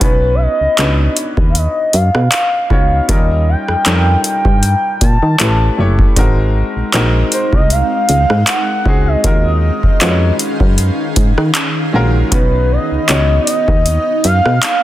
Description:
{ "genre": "contemporary R&B", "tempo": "78 BPM", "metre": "4/4", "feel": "swing 54% on 16ths", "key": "Eb minor", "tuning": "A4 = 443 Hz", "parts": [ { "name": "gliding portamento lead", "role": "melody", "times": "0.0-14.8 s", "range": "B4 to A5", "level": "-17 LUFS", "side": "equal", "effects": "chorus, tape echo" }, { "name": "clear concert grand piano", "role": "accompaniment", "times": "0.0-14.8 s", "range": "G3 to C#5", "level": "-21 LUFS", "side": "left 1 dB", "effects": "none" }, { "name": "solid FM bass", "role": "bass", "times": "0.0-14.6 s", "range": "Gb1 to Eb3", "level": "-14 LUFS", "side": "equal", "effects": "none" }, { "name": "booming analog drum machine", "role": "drums", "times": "0.0-14.8 s", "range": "handclaps, hi-hat, kick drum, rim click", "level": "-14 LUFS", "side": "equal", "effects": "none" }, { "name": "granular cloud pad", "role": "sustained chords", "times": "6.8-14.8 s", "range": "Eb3 to F5", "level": "-22 LUFS", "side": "right 1 dB", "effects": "built-in reverb" } ], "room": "light reverb", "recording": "dense, heavily limited modern master", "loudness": "-11 LUFS", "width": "side -14 dB against mid", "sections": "0.0-14.8 A section", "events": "none", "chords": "0.0 Badd9; 3.1 Eb7; 5.4 A9; 6.2 Ab9; 9.2 Ebm11; 12.3 Badd9", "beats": "| 0.01 0.78 1.55 2.32 | 3.09 3.86 4.63 5.40 | 6.17 6.93 7.70 8.47 | 9.24 10.01 10.78 11.55 | 12.32 13.09 13.86 14.63" }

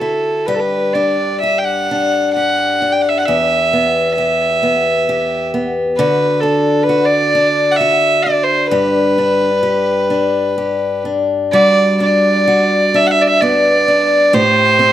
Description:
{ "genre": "celtic folk, Celtic slow air", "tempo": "65 BPM", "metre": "3/4", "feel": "rubato", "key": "G major", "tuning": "A4 = 439 Hz", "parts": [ { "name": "warm fiddle", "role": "melody", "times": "0.0-14.9 s", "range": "A4 to G5", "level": "-13 LUFS", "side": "right 1 dB", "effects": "none" }, { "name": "picked steel-string acoustic guitar", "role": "accompaniment", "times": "0.0-14.9 s", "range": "E2 to G4", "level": "-16 LUFS", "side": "left 2 dB", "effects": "none" } ], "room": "light reverb", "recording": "close, detailed microphones, faint mains hum", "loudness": "-12 LUFS", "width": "side -12 dB against mid", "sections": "0.0-11.5 A section; 11.5-14.9 B section", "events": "none", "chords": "0.5 G5; 3.3 Em; 6.0 D; 8.7 G; 11.5 Gmaj7; 14.3 Am7", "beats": "| 0.48 1.43 2.36 | 3.28 4.18 5.08 | 5.98 6.88 7.79 | 8.71 9.62 10.57 | 11.53 12.47 13.41 | 14.33" }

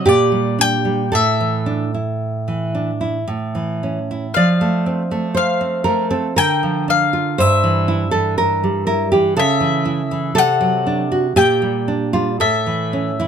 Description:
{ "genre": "romantic duo for mandolin and classical guitar", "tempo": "53-61 BPM", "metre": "3/4", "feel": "rubato", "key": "unclear", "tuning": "A4 = 440 Hz", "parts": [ { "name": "bowl-back mandolin", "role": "melody", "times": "0.0-13.3 s", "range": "D5 to G5", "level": "-19 LUFS", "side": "left 6 dB", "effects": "none" }, { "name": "nylon-string guitar", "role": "accompaniment", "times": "0.0-13.3 s", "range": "G2 to D5", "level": "-17 LUFS", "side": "right 2 dB", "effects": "none" } ], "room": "little or no reverb", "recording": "close, detailed microphones", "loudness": "-15 LUFS", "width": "side -7 dB against mid", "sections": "0.0-13.3 A section", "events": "none", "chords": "0.1 Gm/Bb; 1.1 Asus4; 3.3 A; 4.3 F; 6.4 Bb/D; 7.4 Gm69; 9.4 A/C#; 10.4 D7/C; 11.4 Gm/Bb; 12.4 A", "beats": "0.08 | 1.13 2.21 3.27 | 4.35 5.37 6.38 | 7.39 8.38 9.37 | 10.36 11.36 12.40" }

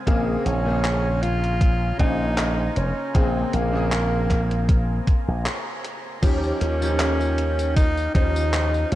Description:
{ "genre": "vaporwave", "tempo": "78 BPM", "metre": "4/4", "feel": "swing 54% on 16ths", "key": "unclear", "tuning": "A4 = 440 Hz", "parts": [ { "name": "bright electric grand piano", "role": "accompaniment", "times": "0.0-8.9 s", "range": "Db3 to C5", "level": "-29 LUFS", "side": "left 1 dB", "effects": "ensemble chorus" }, { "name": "lush unison pad", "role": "sustained chords", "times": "0.0-9.0 s", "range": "Db4 to Bb5", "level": "-36 LUFS", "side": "right 1 dB", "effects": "chorus" }, { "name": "breathy tenor saxophone", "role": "melody", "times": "0.1-9.0 s", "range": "Bb3 to F4", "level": "-27 LUFS", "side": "equal", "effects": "vintage 12-bit sampler grit, tape echo" }, { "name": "slap bass with an envelope filter", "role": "bass", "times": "0.1-9.0 s", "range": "F1 to Eb2", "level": "-23 LUFS", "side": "equal", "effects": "none" }, { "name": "electronic kick drum", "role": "drums", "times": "0.1-8.3 s", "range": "none", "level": "-20 LUFS", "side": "equal", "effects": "none" }, { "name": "gated 80s digital drum machine", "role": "drums", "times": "0.1-9.0 s", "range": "crash cymbal, handclaps, hi-hat, tambourine", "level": "-30 LUFS", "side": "equal", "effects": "gated reverb" } ], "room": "digital ambience", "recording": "dark, warm production", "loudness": "-19 LUFS", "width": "side -14 dB against mid", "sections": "0.0-6.2 A section; 6.2-9.0 B section", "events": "break 5.5-6.2; band accent 5.5-5.8", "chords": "0.1 Bbm9; 6.2 Eb9", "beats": "| 0.07 0.84 1.61 2.38 | 3.15 3.92 4.69 5.46 | 6.23 7.00 7.77 8.54" }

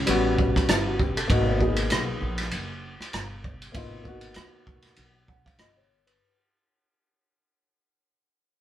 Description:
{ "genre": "hip hop, jazz-hop", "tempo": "98 BPM", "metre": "4/4", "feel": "swing 57% on 16ths", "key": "G# dorian", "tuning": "A4 = 439 Hz", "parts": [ { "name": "dark baby grand piano", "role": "accompaniment", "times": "0.0-6.4 s", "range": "G3 to F#5", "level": "-27 LUFS", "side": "left 1 dB", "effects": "none" }, { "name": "upright bass", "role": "bass", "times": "0.0-6.2 s", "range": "F#1 to D#2", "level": "-29 LUFS", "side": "equal", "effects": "none" }, { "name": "crunchy breakbeat drum kit", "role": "drums", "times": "0.1-6.2 s", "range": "hi-hat, kick drum, ride cymbal, rim click", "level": "-27 LUFS", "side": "right 1 dB", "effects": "none" } ], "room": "moderate studio ambience, RT60 0.5 s", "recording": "band playing live in one room", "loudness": "-22 LUFS", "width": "side -12 dB against mid", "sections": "0.0-6.2 A section", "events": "fade-out 0.0-6.2", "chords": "0.1 A13; 1.3 G#m9", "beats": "0.07 0.69 | 1.30 1.91 2.52 3.13 | 3.75 4.36 4.97 5.58" }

